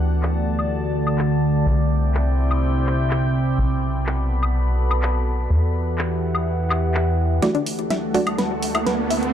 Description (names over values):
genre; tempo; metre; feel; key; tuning
progressive house; 125 BPM; 4/4; straight; unclear; A4 = 442 Hz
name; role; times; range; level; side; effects
evolving wavetable pad; sustained chords; 0.0-9.3 s; D2 to B5; -22 LUFS; equal; phaser, built-in reverb, vintage 12-bit sampler grit
tight sequencer bass; bass; 0.0-7.4 s; B1 to E2; -21 LUFS; equal; none
pop drum kit; drums; 0.2-9.3 s; handclaps, hi-hat, snare drum, woodblock; -28 LUFS; left 1 dB; low-pass filter on snare, studio ambience, low-pass filter on perc, low-pass filter on hats
analog pluck; arpeggios; 7.4-9.2 s; D4 to E5; -25 LUFS; left 2 dB; chorus, ping-pong delay
wide unison pluck; stabs; 7.4-9.3 s; A3 to D5; -26 LUFS; right 2 dB; ping-pong delay
riser; sound effects; 8.1-9.3 s; none; -26 LUFS; right 4 dB; none
room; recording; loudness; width
digital ambience; dark, warm production; -18 LUFS; side -9 dB against mid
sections
0.0-7.4 A section; 7.4-9.3 B section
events
build-up 7.4-9.3; drum fill 7.4-9.3; filter sweep on synth arpeggio sound 7.4-9.3; riser 8.1-9.3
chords
0.0 D; 1.7 Cadd9; 3.6 Bm7; 5.5 Em7; 7.4 D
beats
0.22 0.70 1.18 | 1.66 2.14 2.62 3.10 | 3.58 4.06 4.54 5.02 | 5.50 5.98 6.46 6.94 | 7.42 7.90 8.38 8.86